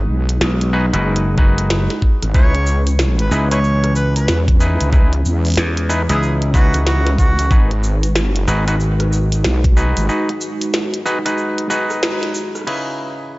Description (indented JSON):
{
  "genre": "glitch hop",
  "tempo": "93 BPM",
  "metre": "4/4",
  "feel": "swing 62% on 16ths",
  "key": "C# minor",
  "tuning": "A4 = 442 Hz",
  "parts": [
    { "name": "dark analog pad", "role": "sustained chords", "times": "0.0-13.4 s", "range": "E3 to B4", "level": "-25 LUFS", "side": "equal", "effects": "chorus, sidechain pumping" },
    { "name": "wobble bass", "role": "bass", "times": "0.0-10.1 s", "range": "G#1 to E2", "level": "-16 LUFS", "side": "equal", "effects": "chorus, overdrive" },
    { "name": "glitchy drum kit", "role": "drums", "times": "0.3-12.9 s", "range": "crash cymbal, hi-hat, rim click, snare drum", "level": "-22 LUFS", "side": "equal", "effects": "none" },
    { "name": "gritty slap bass", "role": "bass", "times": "0.4-9.4 s", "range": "F#1 to E2", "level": "-16 LUFS", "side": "equal", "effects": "overdrive" },
    { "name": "overdriven clav", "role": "stabs", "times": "0.7-13.4 s", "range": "C#3 to B4", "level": "-23 LUFS", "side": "equal", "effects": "sidechain pumping, low-pass filter, tape echo" },
    { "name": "electronic kick drum", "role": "drums", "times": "1.4-9.7 s", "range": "none", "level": "-12 LUFS", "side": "equal", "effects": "none" },
    { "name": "mellow harmonica", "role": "melody", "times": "2.3-7.6 s", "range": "B3 to C#5", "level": "-23 LUFS", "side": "right 1 dB", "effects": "tape echo" },
    { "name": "cabasa", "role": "percussion", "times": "2.3-12.6 s", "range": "none", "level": "-31 LUFS", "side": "right 1 dB", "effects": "none" }
  ],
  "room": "light reverb",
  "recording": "dry, gritty hardware recording, nothing above 7.7 kHz",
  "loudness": "-14 LUFS",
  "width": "side -20 dB against mid",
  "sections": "0.0-12.7 A section",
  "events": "break 10.1-12.7; band accent 12.0-12.3",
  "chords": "0.0 G#m7; 2.3 C#m7; 7.5 G#m7; 12.7 C#m7"
}